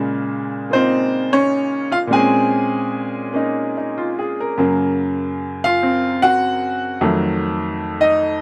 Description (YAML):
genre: solo jazz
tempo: 99 BPM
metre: 4/4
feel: swing 68% on 8ths, rubato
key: Bb minor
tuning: A4 = 440 Hz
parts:
  - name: bright upright piano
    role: solo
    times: 0.0-8.4 s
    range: F2 to Ab5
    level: -19 LUFS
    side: equal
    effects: none
room: light reverb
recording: close, detailed microphones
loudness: -19 LUFS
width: mono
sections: 0.0-8.4 A section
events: none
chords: 0.0 Bbm9; 4.6 Gbmaj7; 7.0 F7b9